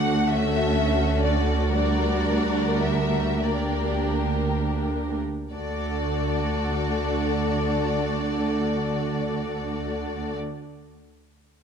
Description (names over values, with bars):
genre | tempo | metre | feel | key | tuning
classical, slow romantic movement for string orchestra | 27-45 BPM (dotted quarters) | 6/8 | rubato | D major | A4 = 440 Hz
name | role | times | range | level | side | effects
warm symphonic violin section | melody | 0.0-10.4 s | D5 to F#5 | -30 LUFS | left 6 dB | none
warm symphonic violin section | second line | 0.0-10.4 s | F#4 to Bb4 | -29 LUFS | left 4 dB | none
rich studio viola section | accompaniment | 0.0-10.4 s | G3 to D4 | -29 LUFS | right 2 dB | none
clear symphonic double bass section | bass | 0.0-10.4 s | D2 | -28 LUFS | right 3 dB | none
warm symphonic cello section | bass | 0.0-10.4 s | D2 | -30 LUFS | right 3 dB | none
room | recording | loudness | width
light reverb | close, detailed microphones | -22 LUFS | side -7 dB against mid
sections
0.0-5.5 A section; 5.5-9.6 B section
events
slowing down 0.0-5.5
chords
0.0 D; 1.7 Gm/D; 5.5 D